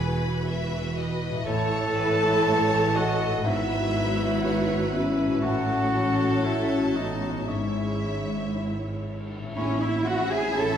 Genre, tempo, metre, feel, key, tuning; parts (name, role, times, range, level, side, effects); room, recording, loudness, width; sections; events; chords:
cinematic, emotional film score for orchestra; 57-62 BPM; 4/4; rubato; A4 = 440 Hz
rich studio violin section; melody; 0.0-10.8 s; A4 to E5; -35 LUFS; left 3 dB
clear clarinet; second line; 0.0-10.8 s; C#4 to C#5; -30 LUFS; equal
mellow flute section; second line; 0.0-10.8 s; C#5 to A5; -34 LUFS; left 1 dB
rich studio violin section; second line; 0.0-10.8 s; B4 to B5; -35 LUFS; left 1 dB
warm oboe; second line; 0.0-10.8 s; C#5 to A5; -34 LUFS; equal
rich studio viola section; accompaniment; 0.0-10.8 s; E3 to A4; -33 LUFS; right 2 dB
warm concert grand piano; accompaniment; 0.0-10.8 s; E2 to C#5; -34 LUFS; left 1 dB
dark French horn section; sustained chords; 0.0-10.8 s; G#3 to D#5; -30 LUFS; left 2 dB
concert harp; arpeggios; 0.0-10.8 s; E2 to C#5; -38 LUFS; left 5 dB
dark studio cello section; bass; 0.0-10.8 s; E2 to A4; -31 LUFS; right 2 dB
warm studio double bass section; bass; 0.0-10.8 s; E1 to A1; -33 LUFS; right 3 dB
cymbal swell and tam-tam; percussion; 5.4-10.8 s; -37 LUFS; equal
wet recital hall reverb, RT60 1.5 s; heard from further back in the room; -23 LUFS; side -9 dB against mid
0.0-9.6 A section; 9.6-10.8 B section
band accent 9.6-10.6
0.0 Eadd9; 1.5 A; 3.5 Eadd9/G#; 5.4 F#m/A; 7.5 C#m/G#; 9.6 A